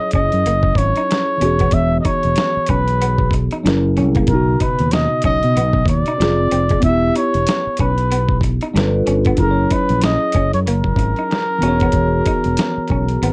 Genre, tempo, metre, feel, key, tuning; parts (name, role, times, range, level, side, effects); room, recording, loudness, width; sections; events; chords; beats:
R&B, neo-soul; 94 BPM; 4/4; swing 60% on 16ths; A4 = 442 Hz
trumpet with cup mute; melody; 0.0-13.3 s; A#4 to E5; -22 LUFS; equal
tine electric piano; accompaniment; 0.0-13.3 s; B2 to C#5; -23 LUFS; equal; phaser
fingered electric bass; bass; 0.1-13.3 s; E1 to B2; -21 LUFS; equal
dusty soul sampler-style drum kit; drums; 0.1-13.3 s; hi-hat, kick drum, snare drum; -22 LUFS; equal; overdrive
electric guitar through a small old amp; second line; 0.2-13.3 s; Ab3 to D#4; -28 LUFS; equal
little or no reverb; worn, warbling old tape, cassette tape, warbly pitch drift; -17 LUFS; mono
0.0-13.3 A section
0.0 F#7sus2; 1.4 E69; 3.6 F#7; 4.3 Badd9; 6.2 Fm; 6.8 Em; 8.7 G9; 9.4 F#9; 11.6 E69
0.45 1.08 | 1.72 2.36 3.00 3.64 | 4.28 4.91 5.55 6.19 | 6.83 7.47 8.11 8.74 | 9.38 10.02 10.66 11.30 | 11.94 12.57 13.21